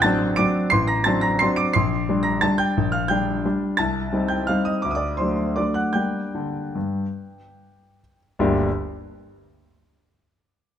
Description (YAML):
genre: classical, piano waltz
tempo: 139-184 BPM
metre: 3/4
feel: rubato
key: G minor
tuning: A4 = 442 Hz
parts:
  - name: clear grand piano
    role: solo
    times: 0.0-8.7 s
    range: G1 to D7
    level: -20 LUFS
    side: equal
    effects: none
room: moderate scoring stage reverb, RT60 1.7 s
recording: close, detailed microphones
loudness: -20 LUFS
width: side -9 dB against mid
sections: 0.0-8.4 A section; 8.4-9.5 B section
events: none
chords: 0.0 D7/A; 1.7 Gm/Bb; 3.8 Cm; 4.8 D7; 6.0 Gm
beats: 0.04 0.38 | 0.73 1.06 1.41 | 1.74 2.08 2.42 | 2.77 3.10 3.45 | 3.79 4.13 4.48 | 4.84 5.19 5.57 | 5.96 6.34 6.76 | 7.17 7.56 7.99 | 8.40